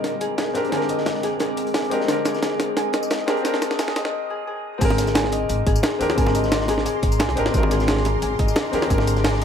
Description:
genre	liquid drum and bass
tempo	176 BPM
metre	4/4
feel	straight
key	Ab lydian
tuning	A4 = 440 Hz
part	clear concert grand piano	accompaniment	0.0-9.4 s	D3 to Bb4	-25 LUFS	left 1 dB	ping-pong delay
part	shimmering ambient pad	sustained chords	0.0-9.4 s	Ab3 to Eb6	-31 LUFS	right 2 dB	chorus, built-in reverb
part	concert harp	arpeggios	0.0-9.4 s	Ab4 to Ab5	-26 LUFS	left 3 dB	low-pass filter, digital delay
part	crunchy breakbeat drum kit	drums	0.0-9.4 s	hi-hat, snare drum	-33 LUFS	equal	high-pass filter on hats, high-pass filter on snare, high-pass filter on room
part	jungle sampler-style drum kit	drums	0.0-9.4 s	crash cymbal, hi-hat, snare drum, tambourine	-25 LUFS	right 1 dB	none
part	upright bass	bass	4.8-9.4 s	Ab1 to Eb2	-24 LUFS	equal	none
part	electronic kick drum	drums	4.8-9.0 s	none	-21 LUFS	equal	none
part	bongos	percussion	4.9-9.1 s	none	-30 LUFS	equal	none
room	moderate plate reverb, RT60 1.1 s, studio ambience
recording	high-pass filter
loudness	-19 LUFS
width	side -8 dB against mid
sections	0.0-4.8 A section; 4.8-9.4 B section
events	build-up 0.0-4.8; drum fill 0.0-4.1; break 4.1-4.8; drop 4.8-9.4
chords	0.0 Abmaj9#11

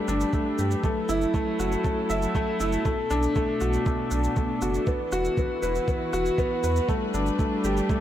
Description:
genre	piano and strings electronica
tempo	119 BPM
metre	4/4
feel	straight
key	B minor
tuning	A4 = 439 Hz
part	dark chamber string section	sustained chords	0.0-8.0 s	B2 to B4	-31 LUFS	equal	none
part	clear baby grand piano	riff	0.0-8.0 s	A3 to E5	-26 LUFS	left 1 dB	digital delay
part	warm sub bass	bass	0.1-7.8 s	E1 to G2	-28 LUFS	right 1 dB	sidechain pumping
part	shaker	drums	0.1-8.0 s	none	-42 LUFS	right 4 dB	none
part	electronic kick drum	drums	0.3-8.0 s	none	-27 LUFS	right 1 dB	none
room	light reverb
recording	none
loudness	-23 LUFS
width	side -11 dB against mid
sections	0.0-8.0 A section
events	none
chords	0.0 Gadd9; 0.8 F#m7; 2.9 Bm7; 4.9 Esus2; 6.9 Gadd9

